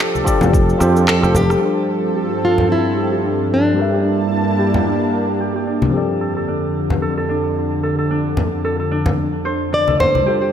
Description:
sunset chillout; 111 BPM; 4/4; swing 56% on 16ths; F major; A4 = 445 Hz
nylon-string guitar; melody; 0.0-4.3, 9.7-10.5 s; D4 to D5; -20 LUFS; equal; tape echo, shimmer reverb
tine electric piano; accompaniment; 0.0-10.5 s; F3 to G5; -22 LUFS; moving between left 4 dB and right 4 dB; auto-pan, low-pass filter, tape echo, shimmer reverb
lush unison pad; sustained chords; 0.0-10.5 s; F2 to A5; -20 LUFS; right 1 dB; chorus, shimmer reverb
electronic shaker, rim click and handclaps; drums; 0.0-1.6 s; -22 LUFS; equal
congas; percussion; 0.2-10.2 s; -20 LUFS; left 2 dB
electronic kick drum; drums; 0.3-0.7 s; -17 LUFS; equal
sustaining fretless electric bass; bass; 0.4-1.5 s; F1 to F2; -16 LUFS; equal
Celtic harp; arpeggios; 1.6-10.5 s; D4 to C5; -23 LUFS; left 1 dB; low-pass filter, tape echo, shimmer reverb
wet recital hall reverb, RT60 1.3 s, small room reverb; -15 LUFS; side -9 dB against mid
0.0-1.6 A section; 1.6-10.5 B section
drum fill 0.8-1.6; band accent 1.5; filter sweep on harp 1.6-10.5
0.0 F6; 1.6 G9sus4; 3.8 Gm69; 5.9 F6

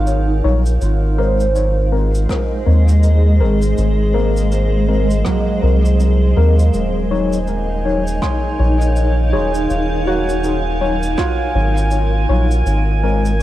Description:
ambient dub; 81 BPM; 4/4; swing 60% on 16ths; Eb dorian; A4 = 440 Hz
granular cloud pad; sustained chords; 0.0-13.4 s; Ab3 to F5; -21 LUFS; equal; built-in reverb, cassette tape
concert harp; arpeggios; 0.0-13.4 s; Gb3 to C6; -25 LUFS; right 7 dB; cassette tape, dub echo
soft dub sub bass; bass; 0.0-13.4 s; Eb1 to Eb2; -15 LUFS; equal
cabasa and rim click; drums; 0.1-13.4 s; -32 LUFS; equal; cassette tape, dub echo
tine electric piano; stabs; 0.4-13.3 s; Gb3 to Db5; -23 LUFS; left 6 dB; phaser, cassette tape, dub echo
electronic kick drum; drums; 2.3-11.4 s; -22 LUFS; equal; overdrive, cassette tape
drifting glass-harmonics texture; texture; 7.2-13.4 s; Ab5; -26 LUFS; right 2 dB; chorus, built-in reverb, cassette tape
small room ambience; home recording on cassette; -13 LUFS; side -14 dB against mid
0.0-13.4 A section
0.0 Ebm7; 0.8 Abadd9; 6.7 Ebm7; 12.7 Abadd9

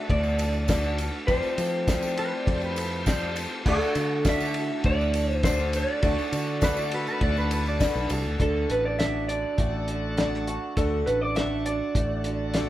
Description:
folk rock and heartland rock; 101 BPM; 4/4; straight; D mixolydian, D major from 8.4 s; A4 = 439 Hz
electric guitar through a small old amp; melody; 0.0-12.7 s; A4 to E5; -29 LUFS; right 1 dB; spring reverb
picked swing-style acoustic guitar; accompaniment; 0.0-12.7 s; D3 to A4; -33 LUFS; left 3 dB
bright tonewheel organ; sustained chords; 0.0-12.7 s; A3 to A4; -38 LUFS; left 1 dB; slow rotary speaker
electric guitar through a small old amp; riff; 0.0-12.7 s; D3 to G4; -33 LUFS; right 4 dB
fingered electric bass; bass; 0.1-12.7 s; A1 to F3; -29 LUFS; equal
cloth-damped thuddy drum kit; drums; 0.1-12.7 s; crash cymbal, hi-hat, kick drum, ride cymbal, snare drum; -28 LUFS; equal
tambourine; percussion; 0.2-8.3 s; -44 LUFS; right 6 dB
pedal steel guitar; second line; 2.2-8.4 s; A4 to D5; -32 LUFS; equal
moderate studio ambience, RT60 0.5 s; band playing live in one room; -23 LUFS; side -14 dB against mid
0.0-8.4 A section; 8.4-12.7 B section
clean electric guitar solo 8.4-12.7
0.0 D; 1.3 Fadd9; 3.7 D

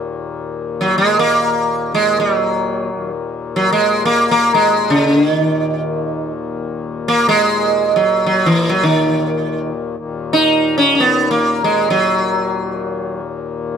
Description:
indian classical, Hindustani; free time; A4 = 440 Hz
hand-pumped harmonium; drone; 0.0-13.8 s; Eb2 to Bb2; -24 LUFS; left 6 dB
sitar; melody; 0.8-13.2 s; Eb3 to Eb4; -14 LUFS; right 1 dB
light reverb; close, detailed microphones; -13 LUFS; side -7 dB against mid
0.0-10.0 A section; 10.0-13.8 A section

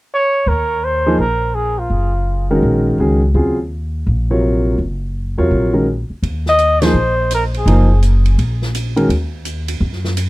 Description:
modal jazz; 167 BPM; 4/4; swing 65% on 8ths; Eb dorian; A4 = 440 Hz
breathy trumpet; melody; 0.1-2.5, 6.5-8.0 s; F4 to Eb5; -16 LUFS; equal; tape echo
upright bass; bass; 0.5-10.3 s; Gb1 to Gb2; -16 LUFS; equal
warm concert grand piano; accompaniment; 1.1-9.1 s; C3 to Db5; -15 LUFS; equal
open jazz drum kit; drums; 6.2-10.3 s; hi-hat, ride cymbal, snare drum; -27 LUFS; right 1 dB
little or no reverb; dry, close 1970s-style studio recording; -14 LUFS; side -19 dB against mid
0.5-6.2 A section; 6.2-10.3 B section
band accent 6.8
0.5 Ebm11; 6.2 Ebm

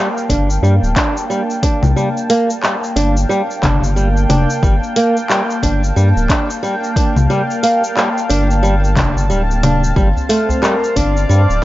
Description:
organic downtempo; 90 BPM; 4/4; swing 59% on 16ths; G minor; A4 = 439 Hz
warm analog pad; sustained chords; 0.0-11.6 s; Bb3 to A5; -21 LUFS; equal; chorus, sidechain pumping
flamenco guitar; arpeggios; 0.0-11.4 s; G3 to D4; -18 LUFS; right 1 dB; low-pass filter, tape echo
deep house drum kit; drums; 0.2-11.6 s; congas, handclaps, hi-hat, shaker; -19 LUFS; left 2 dB
round analog bass; bass; 0.3-11.6 s; D1 to G2; -14 LUFS; equal; tube saturation, sidechain pumping
electronic kick drum; drums; 0.3-11.1 s; -17 LUFS; equal
udu; percussion; 10.2-10.6 s; -21 LUFS; equal
breathy flute-like synth lead; melody; 10.6-11.6 s; Bb4 to D5; -19 LUFS; left 2 dB; wide subtle chorus
light reverb, digital ambience; dry, gritty hardware recording, nothing above 7.5 kHz; -12 LUFS; side -16 dB against mid
0.0-11.6 A section
0.0 Gm9; 10.0 Dm7

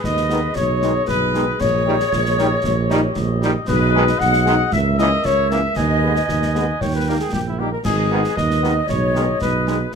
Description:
military-style march for wind band; 115 BPM; 2/4; straight; G# minor; A4 = 440 Hz
mellow cornet; melody; 0.0-9.9 s; E4 to F#5; -23 LUFS; equal
mellow hollow flute section; second line; 0.0-10.0 s; E4 to F#5; -23 LUFS; left 5 dB
mellow woodwind section; second line; 0.0-9.9 s; G4 to G#5; -26 LUFS; left 1 dB
mellow tuba; bass; 0.0-9.8 s; G#1 to D#2; -20 LUFS; right 3 dB
concert snare drum, concert bass drum and clash cymbals; drums; 0.0-9.8 s; -28 LUFS; left 1 dB
mellow French horn section; accompaniment; 0.3-9.8 s; G3 to G#4; -25 LUFS; left 4 dB
bright trombone section; sustained chords; 0.3-9.8 s; D#3 to B3; -25 LUFS; right 3 dB
moderate studio reverb, RT60 0.7 s; -16 LUFS; side -6 dB against mid
0.0-10.0 A section
0.0 G#m; 0.6 G#m/B; 1.6 D#7/A#; 3.7 G#m/B; 4.7 A#dim/C#; 5.8 G#m/D#; 6.8 D#; 7.9 G#m; 8.9 G#m/B

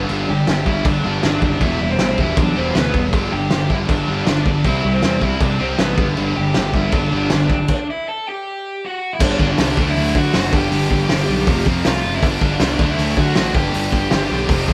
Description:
punk rock; 158 BPM; 4/4; straight; G major; A4 = 440 Hz
distorted electric guitar; riff; 0.0-14.7 s; E2 to D4; -28 LUFS; equal
heavy high-gain guitar; riff; 0.0-14.7 s; F2 to E4; -29 LUFS; equal; distortion
sludgy distorted guitar; riff; 0.0-14.7 s; F2 to D4; -26 LUFS; equal; overdrive
fuzz picked electric bass; bass; 0.0-14.7 s; E1 to D3; -25 LUFS; equal; overdrive
loose indie drum kit; drums; 0.1-14.7 s; crash cymbal, hi-hat, kick drum, snare drum; -22 LUFS; equal
dark smooth lead guitar; melody; 0.3-14.6 s; B3 to A5; -26 LUFS; equal; overdrive
moderate stone room reverb, RT60 1.0 s; band playing live in one room; -18 LUFS; mono
0.0-9.2 A section; 9.2-14.7 B section
stop 7.7-9.2
0.0 G; 1.6 Em; 3.1 G; 4.7 C; 6.0 G; 7.7 Em; 9.2 G; 9.8 D; 10.5 G; 11.5 F; 12.2 G; 12.8 D; 13.6 G

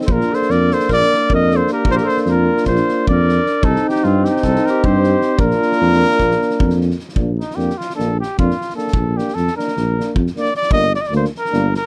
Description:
balkan folk, Balkan brass band; 305 BPM (eighths); 9/8; straight; Bb major; A4 = 437 Hz
dark clarinet; second line; 0.0-6.8 s; C4 to Bb4; -25 LUFS; equal
mellow trombone; accompaniment; 0.0-11.7 s; Bb3 to C4; -24 LUFS; equal
warm euphonium; accompaniment; 0.0-11.7 s; D4 to Eb4; -26 LUFS; equal
loose indie drum kit; percussion; 0.0-11.8 s; kick drum, snare drum; -25 LUFS; equal
mellow trumpet; melody; 0.1-11.9 s; Eb4 to Eb5; -22 LUFS; equal
dark tuba; bass; 0.1-11.7 s; G1 to G2; -20 LUFS; equal
little or no reverb; -16 LUFS; mono
0.0-7.2 A section; 7.2-11.9 B section
trumpet solo 7.2-11.9
0.1 Bb; 3.6 Cm; 5.4 Bb; 10.7 Gm

